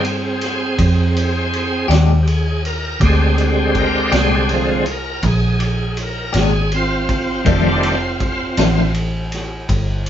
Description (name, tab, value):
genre	slow blues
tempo	54 BPM (dotted quarters)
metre	12/8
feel	straight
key	unclear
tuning	A4 = 441 Hz
part	bright tonewheel organ	sustained chords	0.0-8.9 s	D3 to Bb4	-19 LUFS	right 1 dB	slow rotary speaker, chorus vibrato
part	vintage muted fingered electric bass	bass	0.0-10.1 s	F1 to G2	-18 LUFS	equal	none
part	vintage drum kit	drums	0.0-10.1 s	kick drum, ride cymbal, snare drum	-23 LUFS	equal	none
part	electric guitar at the edge of break-up	accompaniment	1.9-8.8 s	F2 to G4	-19 LUFS	left 4 dB	tremolo
room	moderate studio ambience, RT60 0.5 s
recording	band playing live in one room, nothing above 7.6 kHz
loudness	-15 LUFS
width	side -10 dB against mid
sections	0.0-10.1 A section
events	tonewheel organ solo 0.0-10.1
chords	0.0 Bb13; 7.5 F13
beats	0.79 1.90 | 3.01 4.13 5.24 6.35 | 7.46 8.58 9.69